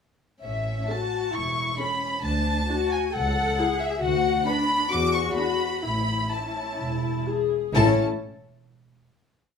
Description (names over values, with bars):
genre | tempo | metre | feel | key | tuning
quick classical-period movement for string orchestra | 124-136 BPM | 4/4 | rubato | A major | A4 = 440 Hz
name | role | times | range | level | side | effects
warm chamber violin section | melody | 0.4-8.0 s | E5 to D6 | -28 LUFS | left 2 dB | none
warm chamber violin section | second line | 0.4-8.0 s | A4 to D6 | -31 LUFS | equal | none
dark chamber cello section | bass | 0.4-8.0 s | A2 to A4 | -29 LUFS | left 5 dB | none
warm chamber double bass section | bass | 0.4-8.0 s | E1 to E2 | -28 LUFS | right 1 dB | none
dark chamber viola section | accompaniment | 0.9-8.0 s | C#4 to B4 | -27 LUFS | left 5 dB | none
room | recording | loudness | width
light reverb | small room reverb | -22 LUFS | side -6 dB against mid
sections
0.4-7.8 A section; 7.8-9.6 final chord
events
none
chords
0.4 A; 2.2 D; 3.1 A/C#; 4.0 Bm/D; 4.9 E7(no3); 5.8 A